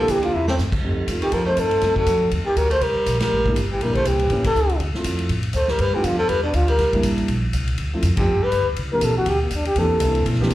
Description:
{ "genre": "jazz, small-group swing and bop", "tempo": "242 BPM", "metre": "4/4", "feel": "swing 58% on 8ths", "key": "C mixolydian", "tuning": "A4 = 445 Hz", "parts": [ { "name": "breathy flugelhorn", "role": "melody", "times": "0.0-10.3 s", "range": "Bb3 to C5", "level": "-21 LUFS", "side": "equal", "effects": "slapback echo" }, { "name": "edgy baritone saxophone", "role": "second line", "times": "0.0-8.7 s", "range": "A2 to A3", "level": "-28 LUFS", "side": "right 3 dB", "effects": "slapback echo" }, { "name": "dark concert grand piano", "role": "accompaniment", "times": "0.0-10.5 s", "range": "E3 to A4", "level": "-25 LUFS", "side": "right 1 dB", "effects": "none" }, { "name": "upright bass", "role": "bass", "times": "0.0-10.5 s", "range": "G1 to A2", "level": "-23 LUFS", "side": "equal", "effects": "none" }, { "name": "swinging big-band drum kit", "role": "drums", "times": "0.1-10.5 s", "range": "crash cymbal, hi-hat, kick drum, ride cymbal, snare drum", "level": "-27 LUFS", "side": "equal", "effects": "none" } ], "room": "light reverb", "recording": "live gig heard through the venue's PA, club reverb", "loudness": "-18 LUFS", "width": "side -15 dB against mid", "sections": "0.0-8.8 A section; 8.8-10.5 B section", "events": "drum fill 0.3; band accent 3.2, 8.2; flugelhorn solo 8.8-10.5", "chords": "0.0 C7; 0.8 F7; 1.8 F#dim7; 2.8 C7(no3); 3.8 Em7b5; 4.3 A7b9; 4.8 Dm7; 5.8 G7; 6.8 C7; 7.8 Dm7; 8.3 G; 8.8 C7" }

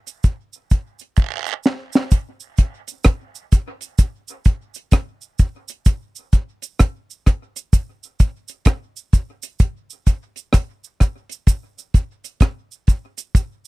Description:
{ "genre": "reggae", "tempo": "64 BPM", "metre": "4/4", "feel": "swing 63% on 16ths", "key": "none", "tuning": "none", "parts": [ { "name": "deep reggae drum kit", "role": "drums", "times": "0.1-13.6 s", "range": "hi-hat, kick drum, rim click, snare drum", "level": "-13 LUFS", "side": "equal", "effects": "none" }, { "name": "cabasa and guiro", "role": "percussion", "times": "0.1-13.7 s", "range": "none", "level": "-31 LUFS", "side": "right 12 dB", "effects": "high-pass filter on perc, dub echo" } ], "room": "little or no reverb", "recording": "dry, close 1970s-style studio recording", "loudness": "-18 LUFS", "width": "side -22 dB against mid", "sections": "0.0-2.1 A section; 2.1-13.7 B section", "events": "drum fill 1.2-2.1", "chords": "none" }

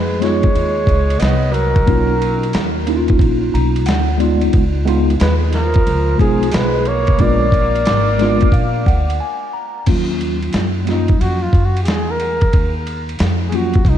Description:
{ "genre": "hip hop, jazz-hop", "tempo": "90 BPM", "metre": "4/4", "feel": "swing 64% on 16ths", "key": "Eb minor", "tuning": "A4 = 442 Hz", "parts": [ { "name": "trumpet with bucket mute", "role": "melody", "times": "0.0-14.0 s", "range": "Eb4 to Eb5", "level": "-21 LUFS", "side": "equal", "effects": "diffuse ambient delay" }, { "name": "breathy tenor saxophone", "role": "second line", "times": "0.0-9.2 s", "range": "F3 to Cb4", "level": "-23 LUFS", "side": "right 3 dB", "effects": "none" }, { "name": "upright bass", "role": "bass", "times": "0.0-14.0 s", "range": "Ab1 to Gb2", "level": "-18 LUFS", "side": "equal", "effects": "none" }, { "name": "tine electric piano", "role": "accompaniment", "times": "0.2-13.8 s", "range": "F3 to A#5", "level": "-20 LUFS", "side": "left 1 dB", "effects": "medium stereo tremolo" }, { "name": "dusty soul sampler-style drum kit", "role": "drums", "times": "0.2-14.0 s", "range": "crash cymbal, hi-hat, kick drum, ride cymbal, snare drum", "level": "-18 LUFS", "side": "equal", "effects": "overdrive" } ], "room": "moderate lush hall reverb, RT60 2.8 s", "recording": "dreamy mix soaked in reverb, cassette tape", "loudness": "-13 LUFS", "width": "side -10 dB against mid", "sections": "0.0-9.9 A section; 9.9-14.0 B section", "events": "tine electric piano fill 3.2-4.5, 7.9-9.9; break 9.2-9.9; muted trumpet solo 9.9-14.0", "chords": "0.0 Db9; 1.9 Bmaj9#11; 3.9 D; 4.5 Db7; 7.2 Bb7b9; 9.9 Ebm9" }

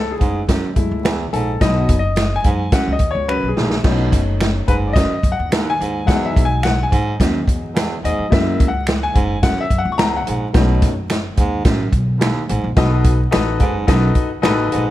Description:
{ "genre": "uptempo 1960s-style soul", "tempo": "108 BPM", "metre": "4/4", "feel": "straight", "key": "unclear", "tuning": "A4 = 440 Hz", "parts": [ { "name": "clear concert grand piano", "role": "accompaniment", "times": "0.0-14.8 s", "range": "F#3 to C#6", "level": "-21 LUFS", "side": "left 4 dB", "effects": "none" }, { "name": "upright bass", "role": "bass", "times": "0.0-14.9 s", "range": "F#1 to G#2", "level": "-21 LUFS", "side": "equal", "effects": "none" }, { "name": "warm baritone saxophone", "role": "riff", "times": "0.2-14.9 s", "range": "D#2 to B2", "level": "-24 LUFS", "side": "right 3 dB", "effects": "none" }, { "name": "vintage drum kit", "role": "drums", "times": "0.2-14.8 s", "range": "crash cymbal, hi-hat, kick drum, snare drum", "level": "-18 LUFS", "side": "equal", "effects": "none" }, { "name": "finger snaps", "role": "percussion", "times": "1.1-14.6 s", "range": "none", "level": "-30 LUFS", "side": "right 2 dB", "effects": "none" } ], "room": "light reverb", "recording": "dark, warm production, vinyl crackle", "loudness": "-15 LUFS", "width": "side -14 dB against mid", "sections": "0.0-12.8 A section; 12.8-14.9 B section", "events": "grand piano solo 0.0-12.8; drum fill 3.3-3.8", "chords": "0.0 F#m7; 1.6 B; 3.8 B7; 6.1 Emaj7; 8.3 F#7; 10.5 B7" }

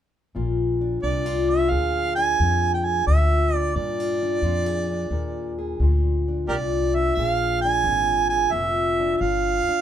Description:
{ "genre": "acoustic country blues, solo or duo", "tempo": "88 BPM", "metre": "4/4", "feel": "swing 67% on 8ths", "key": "Bb mixolydian", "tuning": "A4 = 440 Hz", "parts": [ { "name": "fingerpicked plugged-in steel-string acoustic guitar", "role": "accompaniment", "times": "0.3-9.8 s", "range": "Bb2 to Ab4", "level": "-25 LUFS", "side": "left 3 dB", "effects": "none" }, { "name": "upright bass", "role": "bass", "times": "0.4-9.7 s", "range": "F1 to G2", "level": "-24 LUFS", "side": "left 1 dB", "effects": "none" }, { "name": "warm harmonica", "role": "melody", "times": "1.0-9.8 s", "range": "G4 to Ab5", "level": "-23 LUFS", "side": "right 5 dB", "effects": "none" } ], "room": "light reverb", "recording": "band playing live in one room", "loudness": "-20 LUFS", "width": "side -10 dB against mid", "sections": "0.4-9.8 A section", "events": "none", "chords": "0.4 Bb7" }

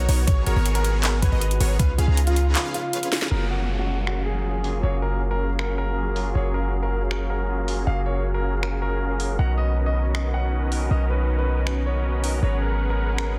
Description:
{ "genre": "future bass", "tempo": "158 BPM", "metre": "4/4", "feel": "half-time", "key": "F# major", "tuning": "A4 = 440 Hz", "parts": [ { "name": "warm concert grand piano", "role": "melody", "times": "0.0-13.3 s", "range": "E#4 to F#5", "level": "-33 LUFS", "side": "equal", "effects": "sidechain pumping, tape echo" }, { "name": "dark studio string section", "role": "sustained chords", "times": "0.0-13.4 s", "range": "C#3 to E#5", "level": "-42 LUFS", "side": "equal", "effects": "none" }, { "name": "concert harp", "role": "arpeggios", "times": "0.0-5.7 s", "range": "D#4 to G#4", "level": "-40 LUFS", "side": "equal", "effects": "none" }, { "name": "unison pluck", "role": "arpeggios", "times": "0.0-3.3 s", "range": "C#5 to A#5", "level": "-39 LUFS", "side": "equal", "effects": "phaser, sidechain pumping, tape echo" }, { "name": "dense compressed supersaw", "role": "riff", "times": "0.0-13.4 s", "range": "B3 to A#5", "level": "-33 LUFS", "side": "equal", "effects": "vintage 12-bit sampler grit, sidechain pumping, low-pass filter" }, { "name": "warm 808-style bass", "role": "bass", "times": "0.0-13.4 s", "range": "F#1 to C#2", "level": "-25 LUFS", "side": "equal", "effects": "sidechain pumping" }, { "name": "trap drum kit", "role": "drums", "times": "0.1-13.3 s", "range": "crash cymbal, finger snaps, handclaps, hi-hat, snare drum", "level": "-31 LUFS", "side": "equal", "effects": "low-pass filter on hats, soft clipping on snare, low-pass filter on snare, low-pass filter on cymbals" }, { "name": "electronic kick drum", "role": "drums", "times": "0.3-1.9 s", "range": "none", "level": "-24 LUFS", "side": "equal", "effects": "none" }, { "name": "barky tine electric piano", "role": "accompaniment", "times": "3.3-13.4 s", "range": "D#3 to A#5", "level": "-36 LUFS", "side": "equal", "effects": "sidechain pumping" }, { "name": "downlifter", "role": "sound effects", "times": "3.3-6.4 s", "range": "none", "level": "-38 LUFS", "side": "equal", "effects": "none" } ], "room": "light reverb", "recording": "dense, heavily limited modern master", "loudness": "-23 LUFS", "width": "mono", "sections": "0.0-3.3 A section; 3.3-13.4 B section", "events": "drop 0.0-3.3; break 2.6-3.3; drum fill 3.1; filter sweep on supersaw synth 3.3-13.4", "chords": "0.3 G#m11; 1.8 C#7; 3.3 F#maj9; 9.4 Bmaj9; 12.4 G#m11" }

